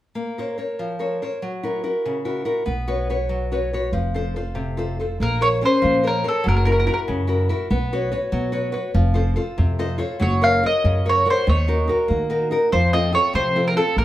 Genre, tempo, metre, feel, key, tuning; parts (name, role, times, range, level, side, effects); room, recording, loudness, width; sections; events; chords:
italian folk, Italian serenade; 96 BPM (dotted quarters); 6/8; straight; Bb harmonic minor; A4 = 440 Hz
nylon-string guitar; accompaniment; 0.2-14.0 s; C3 to Eb5; -23 LUFS; left 1 dB
upright bass; bass; 2.7-14.0 s; F1 to F3; -22 LUFS; equal
mandolin; melody; 5.2-7.0, 10.2-14.0 s; A4 to F5; -19 LUFS; right 1 dB
wet studio reverb, RT60 0.6 s; heard from further back in the room; -19 LUFS; side -14 dB against mid
0.2-5.2 A section; 5.2-14.0 B section
nylon-string guitar fill 9.6-10.2
0.2 Bbmadd9; 1.4 Gb7; 2.7 Bsus2; 3.9 F; 5.2 Bbmadd9; 6.5 Gb7; 7.7 Bsus2; 9.0 F; 10.2 Gb; 11.5 Ebm; 12.7 F